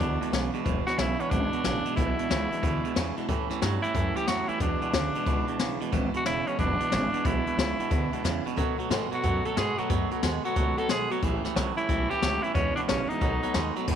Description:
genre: rockabilly.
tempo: 181 BPM.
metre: 4/4.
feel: swing 65% on 8ths.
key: E mixolydian.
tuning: A4 = 443 Hz.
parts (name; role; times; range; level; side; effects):
breathy tenor saxophone; melody; 0.0-13.8 s; C#4 to A4; -31 LUFS; equal; tape echo.
picked steel-string acoustic guitar; accompaniment; 0.0-14.0 s; E2 to F#4; -36 LUFS; left 11 dB; none.
twangy electric guitar; riff; 0.0-14.0 s; E2 to G#3; -31 LUFS; right 11 dB; none.
upright bass; bass; 0.0-14.0 s; E1 to B2; -32 LUFS; equal; none.
jazz brush drum kit; drums; 0.0-14.0 s; crash cymbal, hi-hat, kick drum, snare drum; -31 LUFS; left 3 dB; none.
room: light reverb, small room ambience.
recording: 1960s-style stereo with parts hard left and right.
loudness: -25 LUFS.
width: side -8 dB against mid.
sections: 0.0-13.9 A section.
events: none.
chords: 0.0 E7; 3.3 A7; 4.6 E7; 8.6 B7; 11.2 A7; 12.5 E7; 13.2 B7.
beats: 0.00 0.33 | 0.66 0.98 1.31 1.64 | 1.97 2.30 2.63 2.96 | 3.29 3.62 3.94 4.27 | 4.60 4.93 5.26 5.59 | 5.92 6.25 6.58 6.91 | 7.24 7.58 7.91 8.24 | 8.57 8.90 9.23 9.56 | 9.89 10.23 10.56 10.89 | 11.22 11.55 11.88 12.22 | 12.55 12.88 13.21 13.54 | 13.88.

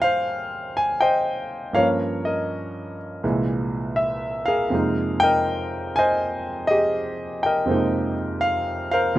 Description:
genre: solo jazz.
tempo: 81 BPM.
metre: 4/4.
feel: swing 69% on 8ths.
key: F minor.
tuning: A4 = 440 Hz.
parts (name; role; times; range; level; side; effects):
clear concert grand piano; solo; 0.0-9.2 s; C2 to Ab5; -20 LUFS; equal; none.
room: moderate small room reverb, RT60 0.6 s.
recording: rough home demo mix.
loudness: -20 LUFS.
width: side -15 dB against mid.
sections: 0.0-9.2 A section.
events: none.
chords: 0.0 Abmaj7; 1.8 Gm7b5; 3.2 C7b13; 4.7 Fm11.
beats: 0.27 1.01 | 1.75 2.49 3.23 3.97 | 4.71 5.45 6.19 6.93 | 7.67 8.41 9.15.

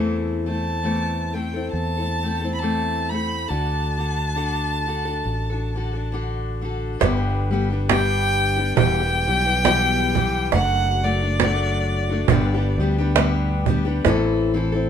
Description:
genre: acoustic folk duo or small band.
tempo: 68 BPM.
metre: 4/4.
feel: swing 57% on 8ths.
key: G major.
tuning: A4 = 440 Hz.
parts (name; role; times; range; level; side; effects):
picked steel-string acoustic guitar; accompaniment; 0.0-14.9 s; E2 to A4; -24 LUFS; left 4 dB; none.
fretless electric bass; bass; 0.0-14.9 s; E1 to E2; -24 LUFS; equal; none.
rich fiddle; melody; 0.5-12.8 s; D5 to B5; -24 LUFS; equal; none.
cajon; percussion; 7.0-14.8 s; none; -19 LUFS; right 9 dB; none.
room: light reverb.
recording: minimal, uncompressed stereo recording.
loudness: -19 LUFS.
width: side -8 dB against mid.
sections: 0.0-7.0 A section; 7.0-14.9 B section.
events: none.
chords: 0.0 Am/E; 3.5 D; 7.0 G; 8.8 Em; 10.5 D/F#; 12.3 G; 14.0 Am.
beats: 0.86 1.74 2.62 | 3.50 4.38 5.26 6.13 | 7.01 7.89 8.77 9.65 | 10.53 11.40 12.28 13.16 | 14.04.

